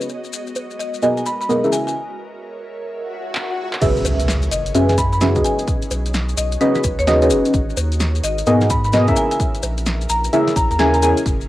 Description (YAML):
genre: UK garage, two-step garage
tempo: 129 BPM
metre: 4/4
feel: swing 64% on 16ths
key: unclear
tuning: A4 = 439 Hz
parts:
  - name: ethereal airy pad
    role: sustained chords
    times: 0.0-11.5 s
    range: G#3 to E5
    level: -32 LUFS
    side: equal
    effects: ensemble chorus, built-in reverb, phaser, sidechain pumping, cassette tape
  - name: deep mellow chord stab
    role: stabs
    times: 0.0-11.2 s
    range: B3 to G#5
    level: -18 LUFS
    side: equal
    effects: chorus, phaser, cassette tape, tape echo
  - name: maracas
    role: percussion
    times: 0.0-11.5 s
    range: none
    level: -30 LUFS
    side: left 7 dB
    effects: none
  - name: punchy analog drum machine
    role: drums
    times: 0.6-11.4 s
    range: bongos, crash cymbal, handclaps, hi-hat, snare drum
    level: -26 LUFS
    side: equal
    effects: overdrive, small room reverb, cassette tape
  - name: marimba with medium hard mallets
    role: melody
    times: 0.8-11.3 s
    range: B4 to B5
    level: -24 LUFS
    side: equal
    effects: cassette tape, tape echo
  - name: swell and impact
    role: sound effects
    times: 3.1-5.7 s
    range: none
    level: -27 LUFS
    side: equal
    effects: none
  - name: saturated sub bass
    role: bass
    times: 3.8-11.4 s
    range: F#1 to G#2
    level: -20 LUFS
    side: equal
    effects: sidechain pumping
  - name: electronic kick drum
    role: drums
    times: 3.8-11.4 s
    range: none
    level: -21 LUFS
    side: equal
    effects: small room reverb, cassette tape
room: moderate studio reverb, RT60 0.6 s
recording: home recording on cassette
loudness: -15 LUFS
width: side -15 dB against mid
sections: 0.0-3.8 A section; 3.8-11.5 B section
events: break 2.0-3.8; swell 3.1-3.8; drum fill 3.4-3.8; drop 3.8-11.5; impact 3.8-5.7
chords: 0.1 G#m7; 1.7 A#m7b5; 3.8 F#9sus4; 5.4 B69; 7.5 G#m7; 9.2 A#m7b5